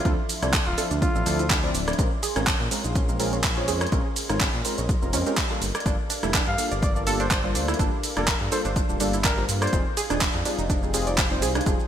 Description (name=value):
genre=deep house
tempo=124 BPM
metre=4/4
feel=swing 54% on 16ths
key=unclear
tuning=A4 = 440 Hz
part: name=trumpet with bucket mute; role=melody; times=0.0-1.5, 6.5-9.8 s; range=F4 to F5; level=-32 LUFS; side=left 1 dB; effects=ping-pong delay
part: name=dark analog pad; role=sustained chords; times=0.0-11.9 s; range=F3 to C6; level=-36 LUFS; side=left 1 dB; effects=chorus, sidechain pumping
part: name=warbly dusty pluck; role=arpeggios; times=0.0-11.8 s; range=Db4 to D5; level=-32 LUFS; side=right 4 dB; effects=chorus, sidechain pumping, digital delay
part: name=warm analog keys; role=stabs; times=0.0-11.8 s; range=F3 to D5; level=-30 LUFS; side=equal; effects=chorus, sidechain pumping, ping-pong delay
part: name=deep house drum kit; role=drums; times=0.0-11.9 s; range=handclaps, hi-hat, ride cymbal, rim click, shaker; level=-27 LUFS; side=right 1 dB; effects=gated reverb
part: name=smooth synth bass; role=bass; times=0.1-11.8 s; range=D1 to Bb2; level=-29 LUFS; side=equal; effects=sidechain pumping
part: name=electronic kick drum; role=drums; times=0.1-11.8 s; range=none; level=-26 LUFS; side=equal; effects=overdrive
room=light reverb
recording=bright 1980s-style digital production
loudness=-21 LUFS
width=side -9 dB against mid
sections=0.0-11.9 A section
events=none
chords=0.0 Dm9; 2.0 Bbm9; 5.6 Gm9; 9.7 Fm9